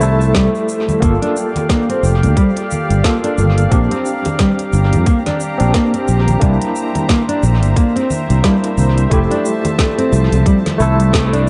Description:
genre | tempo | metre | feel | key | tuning
organic downtempo | 89 BPM | 4/4 | swing 59% on 16ths | unclear | A4 = 440 Hz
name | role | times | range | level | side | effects
overdriven tine electric piano | accompaniment | 0.0-11.5 s | A3 to A4 | -22 LUFS | equal | fast tremolo, sidechain pumping, dub echo
dark studio string section | sustained chords | 0.0-11.5 s | F3 to Bb5 | -26 LUFS | equal | sidechain pumping
fretless electric bass | bass | 0.0-11.5 s | F1 to F2 | -16 LUFS | equal | sidechain pumping
afro-pop drum kit | drums | 0.0-11.4 s | hi-hat, shaker, snare drum | -27 LUFS | equal | dub echo
nylon-string guitar | arpeggios | 0.3-11.5 s | G3 to D4 | -21 LUFS | equal | tape echo
electronic kick drum | drums | 0.3-11.3 s | none | -18 LUFS | equal | overdrive
congas and bongos | percussion | 0.9-10.8 s | none | -27 LUFS | equal | none
room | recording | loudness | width
light reverb, digital ambience | echo-heavy mix, nothing above 10.7 kHz | -14 LUFS | mono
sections
0.0-11.5 A section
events
band accent 11.1-11.5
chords
0.0 Fmaj7; 1.0 Gm7; 3.7 Bb6; 6.4 C7; 9.1 Fmaj7

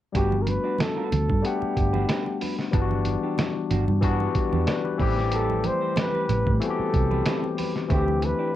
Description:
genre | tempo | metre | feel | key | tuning
lush 1970s-style soul | 93 BPM | 4/4 | swing 54% on 16ths | unclear | A4 = 440 Hz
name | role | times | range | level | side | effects
barky tine electric piano | accompaniment | 0.1-8.6 s | E3 to F#5 | -27 LUFS | left 6 dB | cassette tape, plate reverb
electric guitar through a small old amp | riff | 0.1-8.6 s | G3 to D5 | -36 LUFS | right 8 dB | cassette tape
lo-fi sampler-style drum kit | drums | 0.1-8.4 s | hi-hat, kick drum, snare drum | -27 LUFS | right 1 dB | cassette tape
breathy flugelhorn | melody | 0.2-8.6 s | G4 to C5 | -28 LUFS | right 1 dB | plate reverb
vintage muted fingered electric bass | bass | 0.2-8.3 s | G1 to A2 | -25 LUFS | right 1 dB | none
congas | percussion | 0.3-8.4 s | none | -35 LUFS | right 9 dB | none
room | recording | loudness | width
moderate studio reverb, RT60 0.7 s | home recording on cassette | -22 LUFS | side -13 dB against mid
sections
0.1-8.6 A section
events
none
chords
0.1 Gmaj7; 2.7 Em9/G; 5.0 Am9; 7.9 D9sus4

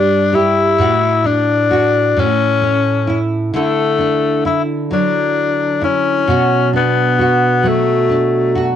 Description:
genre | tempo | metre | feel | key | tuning
pop | 44 BPM (dotted quarters) | 6/8 | straight | D major | A4 = 440 Hz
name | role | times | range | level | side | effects
growling tenor saxophone | melody | 0.0-8.7 s | A3 to E4 | -15 LUFS | left 6 dB | none
nylon-string guitar | accompaniment | 0.0-8.8 s | G2 to G4 | -16 LUFS | right 3 dB | double-tracked left and right, cassette tape
room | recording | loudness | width
light reverb | home recording on cassette | -12 LUFS | side -9 dB against mid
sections
0.0-8.8 A section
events
none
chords
0.0 G5; 0.8 D/A; 2.2 A; 3.5 Dadd9; 6.3 Bm

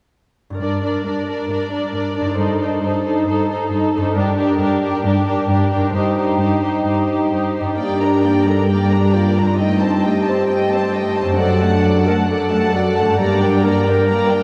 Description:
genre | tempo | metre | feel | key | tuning
classical, dramatic, fast romantic movement for symphony orchestra | 134 BPM | 4/4 | rubato | G minor | A4 = 439 Hz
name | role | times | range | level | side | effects
concert harp | arpeggios | 0.5-14.4 s | F#2 to D5 | -25 LUFS | equal | none
warm symphonic violin section | melody | 0.6-14.4 s | Bb4 to Bb5 | -29 LUFS | equal | none
warm symphonic violin section | second line | 0.6-14.4 s | G4 to F#5 | -26 LUFS | equal | none
warm symphonic viola section | accompaniment | 0.6-14.4 s | F#3 to Eb4 | -24 LUFS | equal | none
rich symphonic cello section | bass | 0.6-14.4 s | F#2 to G2 | -23 LUFS | equal | none
mellow clarinet | second line | 7.8-14.4 s | Eb4 to Bb4 | -22 LUFS | equal | none
room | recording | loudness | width
wet cathedral reverb, RT60 4.5 s | recorded in a church or concert hall | -17 LUFS | mono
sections
0.6-7.8 A section; 7.8-14.4 B section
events
none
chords
0.6 Gm; 5.9 Cm/G; 7.8 Gm; 9.6 Am7b5/G; 11.4 D/F#; 13.2 Gm

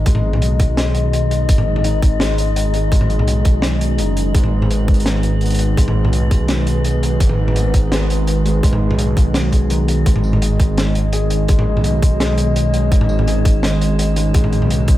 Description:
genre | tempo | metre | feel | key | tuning
half-time drum and bass | 168 BPM | 4/4 | swing 53% on 16ths, half-time | G# minor | A4 = 440 Hz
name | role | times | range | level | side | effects
dark analog pad | sustained chords | 0.0-15.0 s | D#3 to D#5 | -21 LUFS | right 1 dB | chorus, sidechain pumping
felt-muted upright piano | arpeggios | 0.0-15.0 s | D#3 to G#4 | -25 LUFS | left 4 dB | vintage 12-bit sampler grit, diffuse ambient delay
dark detuned saw bass | bass | 0.0-15.0 s | F#1 to B1 | -18 LUFS | equal | none
metallic inharmonic drone | texture | 0.0-15.0 s | C#4 to D#4 | -30 LUFS | equal | chorus, built-in reverb, phaser
crunchy breakbeat drum kit | drums | 0.1-15.0 s | hi-hat, snare drum, tambourine, toms | -22 LUFS | equal | none
electronic kick drum | drums | 0.1-15.0 s | none | -13 LUFS | equal | none
room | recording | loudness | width
light reverb, studio reverb | none | -14 LUFS | side -14 dB against mid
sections
0.0-15.0 A section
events
none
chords
0.0 G#5

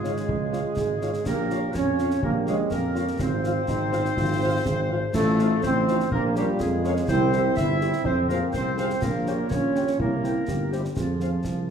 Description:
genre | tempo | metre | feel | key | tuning
military-style march for wind band | 124 BPM | 2/4 | straight | F minor | A4 = 440 Hz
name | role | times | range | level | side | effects
mellow trumpet section | melody | 0.0-11.3 s | E5 to G5 | -42 LUFS | left 2 dB | none
warm euphonium | second line | 0.0-11.7 s | C4 to Ab4 | -32 LUFS | right 2 dB | none
warm woodwind section | second line | 0.0-11.7 s | F4 to E5 | -32 LUFS | left 2 dB | none
mellow French horn section | accompaniment | 0.0-11.3 s | Db4 to Db5 | -35 LUFS | left 5 dB | none
mellow trombone section | sustained chords | 0.0-11.7 s | F3 to E4 | -27 LUFS | right 3 dB | none
mellow tuba | bass | 0.0-11.7 s | G1 to F2 | -26 LUFS | equal | none
concert snare drum, concert bass drum and clash cymbals | drums | 0.0-11.6 s | none | -32 LUFS | left 1 dB | none
room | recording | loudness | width
wet recital hall reverb, RT60 1.6 s | minimal, uncompressed stereo recording | -22 LUFS | side -7 dB against mid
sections
0.0-11.7 A section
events
none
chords
0.0 Db; 1.3 Bbm; 3.2 Fm/Ab; 5.1 F7/A; 6.1 Bbm; 7.1 C; 8.1 Fm; 9.0 Gdim/Bb; 10.0 C7; 11.0 Fm

